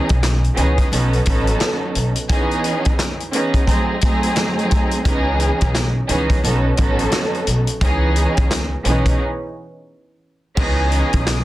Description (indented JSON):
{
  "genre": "hip hop, boom-bap hip-hop",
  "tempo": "87 BPM",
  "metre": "4/4",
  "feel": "swing 62% on 16ths",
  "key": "C# minor",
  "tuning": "A4 = 435 Hz",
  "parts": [
    { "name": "warm symphonic string section", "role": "accompaniment", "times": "0.0-11.4 s", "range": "E3 to A4", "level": "-20 LUFS", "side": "right 1 dB", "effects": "cassette tape, high-pass filter, low-pass filter" },
    { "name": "upright bass", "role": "bass", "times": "0.1-11.4 s", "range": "A1 to C#2", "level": "-19 LUFS", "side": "equal", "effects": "none" },
    { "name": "vintage drum kit", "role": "drums", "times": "0.1-11.4 s", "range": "crash cymbal, handclaps, hi-hat, kick drum, snare drum", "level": "-19 LUFS", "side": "equal", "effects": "vintage 12-bit sampler grit" },
    { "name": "percussive tonewheel organ", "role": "sustained chords", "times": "10.6-11.4 s", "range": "B4 to D#6", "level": "-30 LUFS", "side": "equal", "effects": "fast rotary speaker, high-pass filter, low-pass filter" }
  ],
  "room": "light reverb",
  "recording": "dense, heavily limited modern master",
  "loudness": "-16 LUFS",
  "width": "side -16 dB against mid",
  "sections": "0.0-10.6 A section",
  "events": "break 9.2-10.6",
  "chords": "0.0 C#m9; 0.9 B7; 2.3 C#m9; 3.7 G#7b9; 5.1 C#m9; 6.4 B7; 7.8 C#m9; 9.2 N.C.; 10.6 C#m9",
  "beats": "0.23 0.92 1.61 | 2.30 2.98 3.67 4.37 | 5.05 5.74 6.43 7.12 | 7.81 8.50 9.19 9.88 | 10.57 11.26"
}